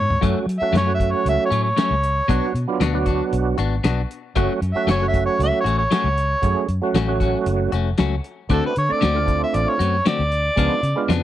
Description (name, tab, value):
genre	straight-eighth soul blues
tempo	116 BPM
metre	4/4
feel	straight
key	F# harmonic minor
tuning	A4 = 440 Hz
part	overdriven harmonica	melody	0.0-11.1 s	A4 to E5	-21 LUFS	equal	slapback echo
part	vintage muted fingered electric bass	bass	0.0-11.2 s	E#1 to F#3	-22 LUFS	equal	none
part	cloth-damped thuddy drum kit	drums	0.1-11.2 s	hi-hat, kick drum, snare drum, toms	-22 LUFS	equal	none
part	percussive tonewheel organ	accompaniment	0.2-11.1 s	F#3 to A4	-23 LUFS	right 6 dB	slow rotary speaker, overdrive, chorus vibrato
part	clean electric guitar	stabs	0.2-11.2 s	F#2 to F#4	-25 LUFS	left 8 dB	spring reverb
room	little or no reverb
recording	dry, close 1970s-style studio recording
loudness	-18 LUFS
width	side -12 dB against mid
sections	0.2-11.2 A section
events	drum fill 0.0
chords	0.2 F#m; 2.3 Bm; 4.4 F#m; 8.5 D7; 10.6 C#7b9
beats	| 0.23 0.74 1.26 1.78 | 2.29 2.81 3.33 3.85 | 4.37 4.88 5.40 5.92 | 6.43 6.95 7.47 7.99 | 8.51 9.02 9.54 10.06 | 10.57 11.09